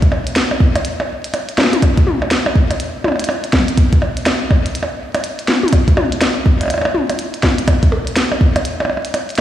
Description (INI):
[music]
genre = IDM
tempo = 123 BPM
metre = 4/4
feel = swing 62% on 16ths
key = none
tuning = none
[part]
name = electronic kick drum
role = drums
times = 0.0-8.5 s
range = none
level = -13 LUFS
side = equal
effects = small room reverb
[part]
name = glitchy drum kit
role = drums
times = 0.0-9.4 s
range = hi-hat, percussion blips, snare drum, toms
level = -16 LUFS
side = equal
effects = small room reverb, ping-pong delay
[sound]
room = moderate echo chamber reverb, RT60 2.4 s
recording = played on a big sound system in a bare room, stone room reverb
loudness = -13 LUFS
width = side -12 dB against mid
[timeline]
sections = 0.0-9.4 A section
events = none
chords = none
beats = 0.36 0.85 1.34 | 1.82 2.31 2.80 3.29 | 3.77 4.26 4.75 5.24 | 5.73 6.21 6.70 7.19 | 7.68 8.16 8.65 9.14